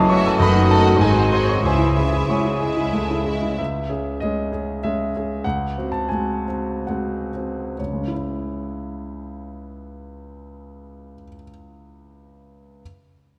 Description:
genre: classical.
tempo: 62-108 BPM.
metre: 3/4.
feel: rubato.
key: C# minor.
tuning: A4 = 442 Hz.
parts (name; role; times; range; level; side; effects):
clear grand piano; melody; 0.0-12.8 s; C#2 to D#6; -24 LUFS; equal; none.
dark clarinet; second line; 0.0-3.2 s; E4 to F#4; -32 LUFS; equal; none.
mellow cor anglais; second line; 0.0-3.2 s; G#4 to D#5; -31 LUFS; equal; none.
small flute group; second line; 0.0-3.2 s; F#5 to A5; -33 LUFS; equal; none.
clear bassoon; accompaniment; 0.0-3.6 s; D#3 to A3; -31 LUFS; equal; none.
dark French horn section; sustained chords; 0.0-3.3 s; E4 to A4; -31 LUFS; equal; none.
dark studio cello section; bass; 0.0-3.5 s; F#2 to C#3; -28 LUFS; equal; none.
rich studio double bass section; bass; 0.0-3.5 s; F#1 to C#2; -28 LUFS; equal; none.
rich studio violin section; melody; 0.1-3.6 s; D#5 to E5; -33 LUFS; equal; none.
clear studio violin section; second line; 0.1-3.6 s; E4 to F#4; -33 LUFS; equal; none.
warm studio viola section; accompaniment; 0.1-3.6 s; G#3 to B#3; -34 LUFS; equal; none.
room: moderate concert hall reverb, RT60 2.6 s.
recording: none.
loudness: -21 LUFS.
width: mono.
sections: 0.0-3.6 A section; 3.6-7.8 B section; 7.8-12.8 C section.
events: slowing down 2.6-7.8.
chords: 0.4 D#dim/F#; 1.0 G#7; 1.6 C#m; 5.4 G#7/C#; 7.8 C#m.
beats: 0.40 0.99 | 1.62 2.28 2.93 | 3.59 4.21 4.82 | 5.44 6.10 6.87 | 7.78 8.60 9.44 | 10.29 11.14 11.96.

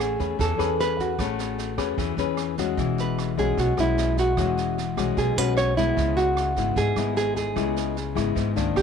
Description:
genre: bossa nova.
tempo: 151 BPM.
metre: 4/4.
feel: straight.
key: unclear.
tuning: A4 = 439 Hz.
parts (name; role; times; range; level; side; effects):
nylon-string guitar; melody; 0.0-8.8 s; E4 to C#5; -25 LUFS; right 2 dB; none.
nylon-string guitar; accompaniment; 0.0-8.8 s; G#2 to B4; -26 LUFS; left 9 dB; none.
upright bass; bass; 0.0-8.8 s; E1 to E2; -28 LUFS; right 2 dB; none.
jazz brush drum kit; drums; 0.2-8.8 s; kick drum, rim click, snare drum; -33 LUFS; right 8 dB; none.
room: wet spring reverb, RT60 2.0 s, studio reverb.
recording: 1960s-style stereo with parts hard left and right.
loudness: -22 LUFS.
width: side -6 dB against mid.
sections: 0.0-8.8 A section.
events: none.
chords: 0.0 Amaj9; 2.8 E69; 6.0 C#m7.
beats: 0.39 0.79 | 1.19 1.59 1.99 2.38 | 2.78 3.18 3.58 3.98 | 4.38 4.78 5.17 5.57 | 5.97 6.37 6.77 7.17 | 7.57 7.96 8.36 8.76.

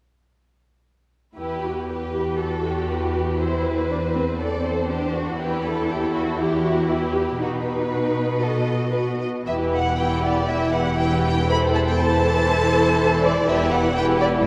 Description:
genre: quick classical-period movement for symphony orchestra.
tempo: 120 BPM.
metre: 4/4.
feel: rubato.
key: E minor.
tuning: A4 = 437 Hz.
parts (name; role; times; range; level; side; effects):
rich studio violin section; melody; 1.4-14.5 s; G4 to B5; -29 LUFS; equal; none.
warm studio violin section; second line; 1.4-14.5 s; E4 to C5; -28 LUFS; equal; none.
warm studio viola section; accompaniment; 1.4-14.5 s; E3 to G4; -28 LUFS; equal; none.
rich studio cello section; bass; 1.4-14.4 s; E2 to B2; -28 LUFS; equal; none.
rich studio double bass section; bass; 9.5-14.4 s; E1; -29 LUFS; equal; none.
room: wet church reverb, RT60 3.0 s.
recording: faint mains hum.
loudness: -22 LUFS.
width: mono.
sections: 1.4-9.5 A section; 9.5-14.5 B section.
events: none.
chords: 1.4 Em; 3.4 Am/E; 5.4 Em; 7.4 B; 9.5 Em.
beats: | 1.37 1.89 2.39 2.90 | 3.40 3.90 4.40 4.89 | 5.39 5.89 6.39 6.90 | 7.41 7.91 8.41 8.93 | 9.46 9.98 10.48 10.99 | 11.48 11.98 12.48 12.97 | 13.46 13.95 14.45.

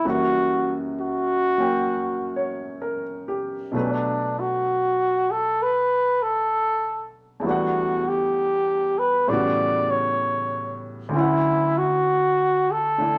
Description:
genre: jazz.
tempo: 65 BPM.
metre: 4/4.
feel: swing 66% on 8ths.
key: unclear.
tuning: A4 = 440 Hz.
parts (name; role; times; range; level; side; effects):
breathy trumpet; melody; 0.0-13.2 s; D4 to D5; -23 LUFS; equal; none.
clear baby grand piano; accompaniment; 0.0-13.2 s; D2 to G5; -29 LUFS; equal; none.
room: wet studio reverb, RT60 0.7 s.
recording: none.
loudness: -23 LUFS.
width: mono.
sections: 0.0-13.2 A section.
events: none.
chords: 0.0 F#7b9; 3.7 Bm7; 7.4 Em11; 9.3 A13; 11.1 Dmaj7.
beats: | 0.05 0.97 1.89 2.82 | 3.74 4.67 5.59 6.52 | 7.44 8.36 9.29 10.21 | 11.14 12.06 12.98.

